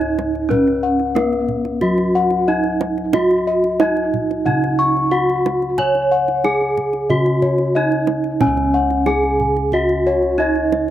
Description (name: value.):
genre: Javanese gamelan.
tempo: 91 BPM.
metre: 4/4.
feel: straight.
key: C# slendro.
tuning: A4 = 438 Hz.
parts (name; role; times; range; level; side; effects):
gamelan-type bronze metallophone; melody; 0.0-10.9 s; B3-40c to C#5; -19 LUFS; right 2 dB; none.
gamelan-type bossed gongs; arpeggios; 0.0-10.8 s; B4-40c to C#6; -20 LUFS; left 4 dB; slapback echo.
gamelan-type bossed gongs; bass; 0.0-10.9 s; C#2 to C#5; -22 LUFS; equal; none.
kendang; percussion; 0.0-10.9 s; none; -23 LUFS; right 6 dB; none.
gamelan-type bronze metallophone; arpeggios; 8.4-10.9 s; C#5 to G#5+20c; -26 LUFS; right 6 dB; slapback echo.
room: little or no reverb.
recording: recorded outdoors, with no room sound.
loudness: -15 LUFS.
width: side -12 dB against mid.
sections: 0.0-10.9 A section.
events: none.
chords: none.